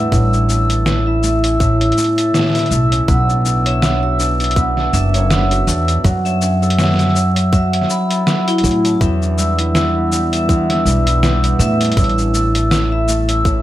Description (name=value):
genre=folktronica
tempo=81 BPM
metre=4/4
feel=swing 56% on 16ths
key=E dorian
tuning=A4 = 440 Hz
part: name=vibraphone with hard mallets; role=second line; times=0.0-13.6 s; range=E4 to E6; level=-20 LUFS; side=left 1 dB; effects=vintage 12-bit sampler grit, ping-pong delay, plate reverb
part: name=concert harp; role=arpeggios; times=0.0-13.6 s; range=E2 to C#5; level=-18 LUFS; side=equal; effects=ping-pong delay, plate reverb
part: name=upright bass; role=bass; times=0.0-13.6 s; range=F#1 to A2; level=-17 LUFS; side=equal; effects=none
part: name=electronic kick drum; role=drums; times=0.1-13.6 s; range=none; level=-17 LUFS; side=equal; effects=none
part: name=lo-fi sampler-style drum kit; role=drums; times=0.1-13.6 s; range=hi-hat, shaker, snare drum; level=-20 LUFS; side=equal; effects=overdrive
room=moderate studio reverb, RT60 0.7 s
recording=vinyl crackle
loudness=-13 LUFS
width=side -14 dB against mid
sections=0.0-13.6 A section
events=none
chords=0.1 A; 3.1 Bmadd9; 6.0 F#m; 9.0 Em7; 12.0 A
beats=| 0.12 0.86 1.60 2.34 | 3.08 3.82 4.56 5.30 | 6.04 6.79 7.53 8.27 | 9.01 9.75 10.49 11.23 | 11.97 12.71 13.45